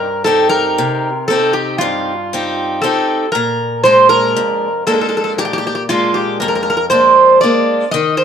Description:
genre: greek folk, Greek bouzouki band.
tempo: 117 BPM (eighths).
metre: 9/8.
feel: straight.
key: unclear.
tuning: A4 = 440 Hz.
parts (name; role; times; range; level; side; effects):
Greek bouzouki; melody; 0.0-8.2 s; F4 to Eb5; -13 LUFS; right 1 dB; none.
picked steel-string acoustic guitar; accompaniment; 0.0-8.2 s; F2 to G4; -18 LUFS; left 2 dB; none.
room: wet studio reverb, RT60 0.8 s.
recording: band playing live in one room.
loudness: -11 LUFS.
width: side -8 dB against mid.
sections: 0.0-8.2 A section.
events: none.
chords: 0.0 Cm; 3.3 Bb7.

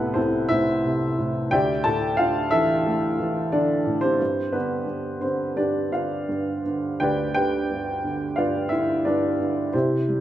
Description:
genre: classical, lyrical solo piano.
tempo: 89 BPM.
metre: 4/4.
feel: rubato.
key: unclear.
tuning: A4 = 440 Hz.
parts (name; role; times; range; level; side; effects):
warm upright piano; solo; 0.0-10.2 s; C2 to A5; -21 LUFS; equal; none.
room: moderate recital hall reverb, RT60 1.4 s.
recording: dark, warm production.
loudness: -21 LUFS.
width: side -12 dB against mid.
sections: 0.0-10.2 A section.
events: none.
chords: 0.0 Am/C; 1.5 Dsus2; 4.2 G.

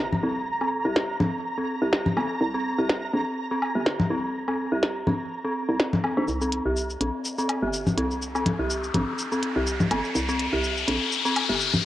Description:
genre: minimal techno.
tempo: 124 BPM.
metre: 4/4.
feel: swing 55% on 16ths.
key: unclear.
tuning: A4 = 439 Hz.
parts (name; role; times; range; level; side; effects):
hollow knocking FM bass; bass; 0.0-11.8 s; G1 to C2; -28 LUFS; equal; high-pass filter.
impact and riser; sound effects; 0.0-0.5, 7.4-11.8 s; none; -29 LUFS; left 4 dB; none.
flickering grainy texture; texture; 0.0-6.3 s; Bb5; -32 LUFS; right 1 dB; built-in reverb, cassette tape.
congas and woodblock; percussion; 0.1-11.8 s; none; -26 LUFS; left 1 dB; cassette tape.
dark detuned synth bell; riff; 0.2-11.5 s; C4 to G4; -28 LUFS; equal; chorus, low-pass filter, cassette tape, tape echo.
minimal click drum kit; drums; 1.0-11.8 s; cabasa, hi-hat, snare drum; -27 LUFS; equal; cassette tape.
room: moderate spring reverb, RT60 2.7 s.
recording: home recording on cassette.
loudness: -23 LUFS.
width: side -14 dB against mid.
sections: 0.0-6.3 A section; 6.3-11.8 B section.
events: impact 0.0-0.5; build-up 6.3-11.8; filter sweep on synth bell 6.3-11.8; filter sweep 6.3-11.8; riser 7.4-11.8.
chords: 0.0 C7(no3); 6.3 C5.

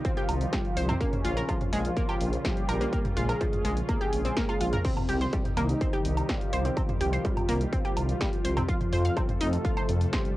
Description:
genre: melodic techno.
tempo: 125 BPM.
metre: 4/4.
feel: straight.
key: C phrygian.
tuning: A4 = 441 Hz.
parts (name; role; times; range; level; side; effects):
mellow synth brass; melody; 0.0-10.4 s; C3 to A4; -34 LUFS; equal; chorus, sidechain pumping, cassette tape, analog delay.
evolving wavetable pad; sustained chords; 0.0-10.4 s; Bb2 to A4; -36 LUFS; equal; chorus, built-in reverb, sidechain pumping, cassette tape.
analog pluck; arpeggios; 0.0-10.2 s; F3 to F6; -33 LUFS; equal; chorus, sidechain pumping, cassette tape, analog delay.
electronic kick drum; drums; 0.0-10.2 s; none; -30 LUFS; equal; distortion, cassette tape.
punchy analog drum machine; drums; 0.0-10.3 s; crash cymbal, hi-hat, snare drum, toms, woodblock; -34 LUFS; right 1 dB; sidechain pumping on hats, cassette tape, sidechain pumping on toms, sidechain pumping on perc, sidechain pumping on cymbals.
dark detuned saw bass; bass; 0.3-10.1 s; Bb1 to F2; -28 LUFS; equal; sidechain pumping.
room: light reverb.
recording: home recording on cassette.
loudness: -25 LUFS.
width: side -16 dB against mid.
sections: 0.0-10.4 A section.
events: none.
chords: 0.0 Cm; 1.0 Bbm; 4.8 Cm; 8.7 F.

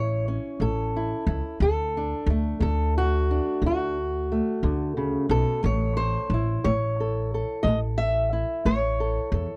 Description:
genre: acoustic country blues, solo or duo.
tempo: 60 BPM (dotted quarters).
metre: 12/8.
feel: straight.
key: A major.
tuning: A4 = 444 Hz.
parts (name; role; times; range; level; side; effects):
fingerpicked old ladder-braced acoustic guitar; melody; 0.0-9.6 s; A2 to E5; -28 LUFS; equal; none.
upright bass; bass; 0.0-9.4 s; A1 to E2; -28 LUFS; equal; none.
room: little or no reverb.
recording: dry, close 1970s-style studio recording.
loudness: -25 LUFS.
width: mono.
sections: 0.0-9.6 A section.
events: none.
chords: 0.0 A; 1.6 D; 5.6 A.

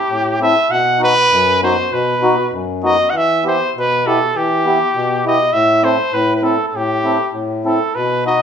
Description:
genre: alpine folk.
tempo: 99 BPM.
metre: 2/4.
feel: rubato.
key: unclear.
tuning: A4 = 440 Hz.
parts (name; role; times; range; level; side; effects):
warm trumpet; melody; 0.0-8.4 s; G4 to F#5; -15 LUFS; equal; none.
mellow accordion; accompaniment; 0.1-8.4 s; F#2 to A4; -17 LUFS; left 1 dB; none.
room: wet large studio reverb, RT60 0.9 s.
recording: band playing live in one room, nothing above 10.8 kHz.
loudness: -13 LUFS.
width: side -7 dB against mid.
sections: 0.0-8.4 A section.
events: none.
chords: 0.0 Am; 0.7 B; 3.1 Em; 5.5 Am.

